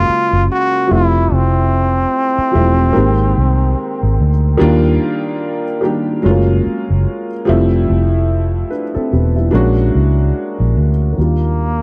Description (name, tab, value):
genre	R&B, neo-soul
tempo	73 BPM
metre	4/4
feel	swing 59% on 16ths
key	unclear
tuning	A4 = 440 Hz
part	brilliant trombone	melody	0.0-4.2, 11.2-11.8 s	Bb3 to Gb4	-19 LUFS	equal	tape echo
part	dark upright piano	accompaniment	0.0-11.8 s	Db3 to Cb5	-19 LUFS	equal	none
part	vintage muted fingered electric bass	bass	0.0-11.8 s	E1 to Eb2	-16 LUFS	equal	none
room	studio ambience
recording	dry, close 1970s-style studio recording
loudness	-15 LUFS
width	mono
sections	0.0-11.2 A section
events	none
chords	0.0 Gbmaj9; 0.9 Fmaj9; 2.9 Abmaj9; 4.6 Ebmaj9; 6.2 Gbmaj9; 7.5 Fmaj9; 9.5 Bb7alt; 11.2 Ebmaj9